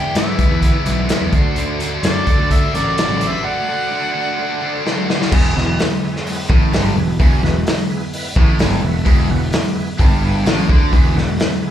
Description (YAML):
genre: blues rock power trio and southern rock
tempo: 128 BPM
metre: 4/4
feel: straight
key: E mixolydian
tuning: A4 = 441 Hz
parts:
  - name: clear harmonica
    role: melody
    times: 0.0-4.9 s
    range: D5 to G5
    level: -22 LUFS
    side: equal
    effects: overdrive, slapback echo
  - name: dark smooth lead guitar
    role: second line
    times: 0.0-4.9 s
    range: A4 to D5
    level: -31 LUFS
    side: right 2 dB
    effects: overdrive, slapback echo
  - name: overdriven tonewheel organ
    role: sustained chords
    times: 0.0-11.7 s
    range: B3 to B5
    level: -31 LUFS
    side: right 4 dB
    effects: slow rotary speaker, chorus vibrato
  - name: biting overdriven guitar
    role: riff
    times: 0.0-11.3 s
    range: E2 to F#4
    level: -21 LUFS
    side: equal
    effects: slapback echo
  - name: fuzz picked electric bass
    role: bass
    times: 0.1-11.4 s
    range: E1 to G#2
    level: -20 LUFS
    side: equal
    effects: overdrive
  - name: raw garage drum kit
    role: drums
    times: 0.2-11.5 s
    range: crash cymbal, hi-hat, kick drum, snare drum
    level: -16 LUFS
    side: equal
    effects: none
room: small room ambience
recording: live gig heard through the venue's PA, club reverb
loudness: -14 LUFS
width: side -11 dB against mid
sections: 0.0-5.3 A section; 5.3-11.7 B section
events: break 3.4-5.3; drum fill 4.9-5.3; tonewheel organ fill 8.1-9.1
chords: 0.0 E; 1.3 D; 5.3 E